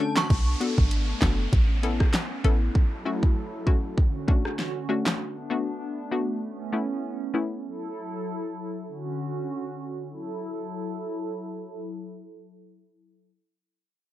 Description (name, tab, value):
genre	dancehall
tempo	98 BPM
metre	4/4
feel	swing 56% on 16ths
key	F# minor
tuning	A4 = 440 Hz
part	analog pluck	accompaniment	0.0-7.5 s	A3 to A4	-30 LUFS	left 4 dB	chorus, low-pass filter
part	hollow soft pad	sustained chords	0.0-13.3 s	D3 to A4	-33 LUFS	right 2 dB	chorus, sidechain pumping, low-pass filter
part	pop drum kit	drums	0.0-5.2 s	handclaps, hi-hat, kick drum, rim click, snare drum	-23 LUFS	equal	none
part	short 808-style bass	bass	0.3-2.7 s	F#1 to B1	-23 LUFS	equal	none
part	downlifter	sound effects	0.3-5.2 s	none	-38 LUFS	right 1 dB	none
room	little or no reverb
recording	dark, warm production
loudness	-24 LUFS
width	side -14 dB against mid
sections	0.3-10.1 A section; 10.1-12.5 B section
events	break 0.0-0.3; filter sweep 0.3-10.1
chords	0.3 Bm7; 1.5 Aadd9; 2.8 F#m7; 4.0 Dmaj7; 5.2 Bm7; 6.4 Aadd9; 7.6 F#m7; 8.9 Dmaj7; 10.1 F#m7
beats	| 0.30 0.91 1.53 2.14 | 2.75 3.36 3.98 4.59 | 5.20 5.81 6.42 7.04 | 7.65 8.26 8.87 9.48 | 10.10 10.71 11.32 11.93